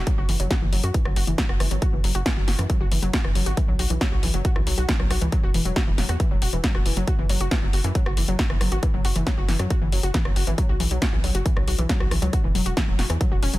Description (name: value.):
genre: uplifting trance.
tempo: 137 BPM.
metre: 4/4.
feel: straight.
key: unclear.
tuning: A4 = 440 Hz.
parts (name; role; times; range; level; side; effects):
wide unison pluck; arpeggios; 0.0-13.6 s; E3 to F#4; -29 LUFS; left 2 dB; sidechain pumping, tape echo.
tight sequencer bass; bass; 0.0-13.6 s; E1 to F#2; -25 LUFS; equal; sidechain pumping.
electronic kick drum; drums; 0.1-13.3 s; none; -23 LUFS; equal; none.
punchy analog drum machine; drums; 0.1-13.6 s; hi-hat, rim click, snare drum; -28 LUFS; left 1 dB; overdrive, sidechain pumping on hats.
room: little or no reverb.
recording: dense, heavily limited modern master.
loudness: -20 LUFS.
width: side -17 dB against mid.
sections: 0.0-13.6 A section.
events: none.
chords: 0.1 N.C.; 3.6 B5; 5.3 Esus2; 7.1 N.C.; 10.6 B5; 12.3 E5.